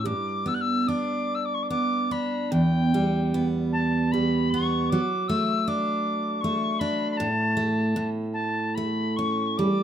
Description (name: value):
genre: celtic folk, Celtic slow air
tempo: 71-80 BPM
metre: 3/4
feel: rubato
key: unclear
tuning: A4 = 440 Hz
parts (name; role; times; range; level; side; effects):
- wooden whistle; melody; 0.0-9.8 s; G5 to F#6; -28 LUFS; left 3 dB; plate reverb
- picked steel-string acoustic guitar; accompaniment; 0.0-9.8 s; E2 to D4; -24 LUFS; right 2 dB; plate reverb
room: moderate studio reverb, RT60 0.6 s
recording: rough home demo mix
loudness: -23 LUFS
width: side -9 dB against mid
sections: 0.0-9.8 A section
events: none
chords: 0.0 G; 2.5 Em; 4.9 D/F#; 7.2 N.C.; 8.0 A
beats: | 0.05 0.88 1.71 | 2.52 3.34 4.14 | 4.91 5.68 6.44 | 7.20 7.97 8.77 | 9.59